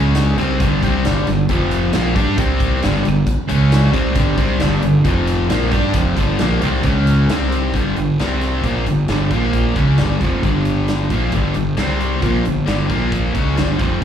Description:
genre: classic rock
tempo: 134 BPM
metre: 4/4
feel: straight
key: unclear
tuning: A4 = 440 Hz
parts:
  - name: cranked stack guitar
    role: riff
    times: 0.0-14.0 s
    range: F2 to G4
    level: -20 LUFS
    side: left 9 dB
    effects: overdrive, slapback echo
  - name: sludgy distorted guitar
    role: riff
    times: 0.0-14.0 s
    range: F2 to G4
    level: -21 LUFS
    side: right 8 dB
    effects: overdrive
  - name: fuzz fingered electric bass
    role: bass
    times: 0.0-14.0 s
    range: F1 to G2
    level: -19 LUFS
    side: equal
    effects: overdrive
  - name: huge arena drum kit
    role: drums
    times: 0.1-14.0 s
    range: hi-hat, kick drum, snare drum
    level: -22 LUFS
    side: equal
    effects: none
room: studio reverb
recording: live gig heard through the venue's PA, club reverb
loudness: -14 LUFS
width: side -9 dB against mid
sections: 0.0-7.7 A section; 7.7-14.0 B section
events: none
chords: 0.4 G5; 1.5 F5; 1.9 G5; 2.4 C5; 2.8 G5; 3.5 C#5; 3.9 G5; 5.1 F5; 5.5 G5; 6.9 C#5; 7.3 C5; 7.7 G5; 8.2 C5; 8.6 G5; 9.3 Bb5; 9.8 G5; 11.8 C5; 12.2 G5; 12.9 Bb5; 13.4 G5

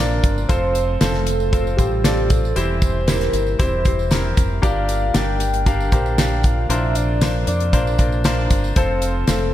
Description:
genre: piano-driven pop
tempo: 116 BPM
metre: 4/4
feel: straight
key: unclear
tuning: A4 = 440 Hz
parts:
  - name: soft octave-layered synth lead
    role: melody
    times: 0.0-9.5 s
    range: G4 to G5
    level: -24 LUFS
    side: equal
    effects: chorus, phaser, slapback echo
  - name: clear concert grand piano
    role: accompaniment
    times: 0.0-9.5 s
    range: G2 to F5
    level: -24 LUFS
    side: left 2 dB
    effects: slapback echo
  - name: mellow tonewheel organ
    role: sustained chords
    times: 0.0-9.5 s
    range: C3 to G4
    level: -32 LUFS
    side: right 2 dB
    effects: none
  - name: deep dub fingered electric bass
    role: bass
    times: 0.0-9.5 s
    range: E1 to F2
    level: -21 LUFS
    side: equal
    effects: none
  - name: damped 70s drum kit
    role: drums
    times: 0.2-9.4 s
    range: hi-hat, kick drum, snare drum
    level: -19 LUFS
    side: equal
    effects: none
  - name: tambourine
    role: percussion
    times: 0.2-9.4 s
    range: none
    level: -37 LUFS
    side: right 10 dB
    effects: none
room: light reverb, studio ambience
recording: none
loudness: -16 LUFS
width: side -12 dB against mid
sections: 0.0-9.5 A section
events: none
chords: 0.5 F; 2.6 C/E; 4.6 Gm; 8.8 F

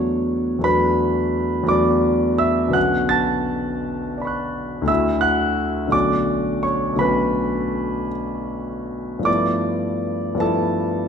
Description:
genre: classical, impressionist solo piano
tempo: 51-58 BPM (dotted quarters)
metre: 9/8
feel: rubato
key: unclear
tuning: A4 = 438 Hz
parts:
  - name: warm concert grand piano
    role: solo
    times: 0.0-11.1 s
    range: B1 to A6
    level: -18 LUFS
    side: equal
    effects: none
room: wet recital hall reverb, RT60 1.5 s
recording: minimal, uncompressed stereo recording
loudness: -18 LUFS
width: side -7 dB against mid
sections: 0.0-11.1 A section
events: none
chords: 0.0 D69/E; 2.8 Bm9; 4.9 Dadd9; 5.9 Bm9; 9.3 G13

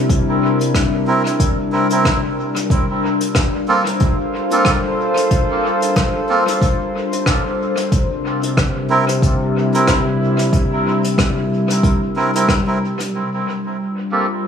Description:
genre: ambient dub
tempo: 92 BPM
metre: 4/4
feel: swing 57% on 16ths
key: G dorian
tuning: A4 = 440 Hz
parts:
  - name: warbly tape-like pad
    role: sustained chords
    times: 0.0-14.5 s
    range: C3 to C5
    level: -18 LUFS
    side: left 2 dB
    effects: chorus, built-in reverb
  - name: electronic kick drum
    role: drums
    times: 0.1-12.6 s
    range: none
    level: -18 LUFS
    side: equal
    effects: none
  - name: vintage brush drum kit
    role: drums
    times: 0.1-13.1 s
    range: hi-hat, rim click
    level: -23 LUFS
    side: left 1 dB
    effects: low-pass filter on hats, low-pass filter on snare, low-pass filter on room, dub echo
  - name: melodica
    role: stabs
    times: 1.1-14.3 s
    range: Bb3 to Bb4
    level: -20 LUFS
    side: right 2 dB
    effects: low-pass filter, dub echo
room: light reverb, small room ambience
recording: echo-heavy mix, studio reverb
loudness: -15 LUFS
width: side -7 dB against mid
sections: 0.0-13.1 A section; 13.1-14.5 B section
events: none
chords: 0.0 C7; 2.7 Gm11; 7.9 C7; 13.1 Gm11

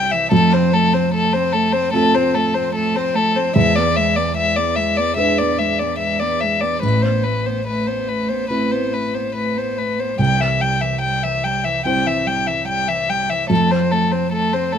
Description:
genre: neoclassical piano and strings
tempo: 73 BPM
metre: 4/4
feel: rubato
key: unclear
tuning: A4 = 440 Hz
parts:
  - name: warm violin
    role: melody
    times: 0.0-14.8 s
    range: A4 to G5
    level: -18 LUFS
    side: left 4 dB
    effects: none
  - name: warm cello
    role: second line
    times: 0.0-14.8 s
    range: E3 to C4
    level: -24 LUFS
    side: right 4 dB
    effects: none
  - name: felt-muted upright piano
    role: accompaniment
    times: 0.0-14.8 s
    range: A1 to C5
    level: -20 LUFS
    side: right 2 dB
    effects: none
room: light reverb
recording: minimal, uncompressed stereo recording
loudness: -16 LUFS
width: side -8 dB against mid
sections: 0.0-14.8 A section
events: none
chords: 0.3 F; 3.6 E7; 6.8 Amadd9; 10.2 C; 13.5 F

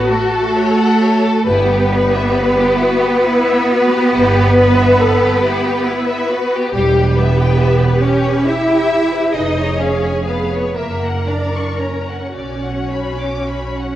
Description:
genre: classical, slow romantic movement for string orchestra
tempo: 35-47 BPM (dotted quarters)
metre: 12/8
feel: rubato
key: unclear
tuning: A4 = 441 Hz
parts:
  - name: clear studio violin section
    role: melody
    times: 0.0-14.0 s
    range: E4 to D6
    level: -25 LUFS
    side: left 5 dB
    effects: none
  - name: rich studio violin section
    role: second line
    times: 0.0-14.0 s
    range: G4 to E5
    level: -18 LUFS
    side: left 2 dB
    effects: none
  - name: rich studio viola section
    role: accompaniment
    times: 0.0-13.9 s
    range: E4 to B4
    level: -22 LUFS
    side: equal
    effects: none
  - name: rich studio cello section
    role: bass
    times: 0.0-14.0 s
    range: G3 to E4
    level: -17 LUFS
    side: right 2 dB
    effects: none
  - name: clear studio double bass section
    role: bass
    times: 1.5-13.8 s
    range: E1 to B1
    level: -18 LUFS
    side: right 2 dB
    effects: none
room: moderate scoring stage reverb, RT60 2.0 s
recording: worn, warbling old tape, cassette tape, warbly pitch drift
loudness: -12 LUFS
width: side -13 dB against mid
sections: 0.0-14.0 A section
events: none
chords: 0.0 F#m/A; 1.5 Em/G; 6.7 Em; 9.3 C#7/E#; 10.8 F#; 12.3 Bm

